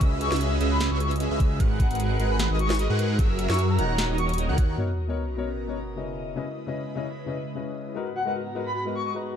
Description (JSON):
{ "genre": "future bass", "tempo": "151 BPM", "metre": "4/4", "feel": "swing 54% on 16ths, half-time", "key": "G# minor", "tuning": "A4 = 443 Hz", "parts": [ { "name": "Celtic harp", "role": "arpeggios", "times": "0.0-9.4 s", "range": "F#4 to A#5", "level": "-37 LUFS", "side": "left 5 dB", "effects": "vintage 12-bit sampler grit, sidechain pumping, ping-pong delay" }, { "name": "airy dreamy lead", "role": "arpeggios", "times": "0.0-4.8 s", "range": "D#6 to F#6", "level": "-37 LUFS", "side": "equal", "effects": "chorus, vintage 12-bit sampler grit, sidechain pumping, ping-pong delay" }, { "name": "big bright polysynth", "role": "riff", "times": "0.0-4.8 s", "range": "D#3 to F#5", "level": "-29 LUFS", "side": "right 2 dB", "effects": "chorus, phaser, sidechain pumping" }, { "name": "wide detuned saw bass", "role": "bass", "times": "0.0-4.8 s", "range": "D#1 to G#2", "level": "-25 LUFS", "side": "equal", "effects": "chorus, sidechain pumping" }, { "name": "electronic kick drum", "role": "drums", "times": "0.0-4.7 s", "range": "none", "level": "-22 LUFS", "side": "equal", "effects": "none" }, { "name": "trap drum kit", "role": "drums", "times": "0.0-4.7 s", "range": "hi-hat, snare drum", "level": "-31 LUFS", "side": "equal", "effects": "low-pass filter on hats, low-pass filter on snare" }, { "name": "breathy flute-like synth lead", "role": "melody", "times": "0.2-4.3, 8.2-9.1 s", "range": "F#5 to C#6", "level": "-31 LUFS", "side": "left 2 dB", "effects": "wide subtle chorus, sidechain pumping, tape echo" }, { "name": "warm baby grand piano", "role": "accompaniment", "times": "4.8-9.4 s", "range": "B2 to A#5", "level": "-32 LUFS", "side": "left 6 dB", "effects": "sidechain pumping, ping-pong delay" }, { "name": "airy breathy pad", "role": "sustained chords", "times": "5.1-9.4 s", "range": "G#2 to A#5", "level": "-36 LUFS", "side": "right 1 dB", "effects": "chorus, phaser, sidechain pumping" }, { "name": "sub drop", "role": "sound effects", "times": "4.8-6.4 s", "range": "none", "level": "-31 LUFS", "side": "equal", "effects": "none" } ], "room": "light reverb", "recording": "dark, warm production", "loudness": "-23 LUFS", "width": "side -8 dB against mid", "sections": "0.0-4.8 A section; 4.8-9.4 B section", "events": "drop 0.0-4.8; impact 4.8-6.4", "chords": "0.0 C#m9; 1.6 G#m7; 3.2 F#9; 4.0 D#m7; 4.8 Bmaj7; 6.2 C#m9; 8.0 G#m7", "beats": "| 0.01 0.41 0.81 1.20 | 1.60 2.00 2.40 2.79 | 3.19 3.59 3.98 4.38 | 4.78 5.18 5.57 5.97 | 6.37 6.77 7.16 7.56 | 7.96 8.36 8.75 9.15" }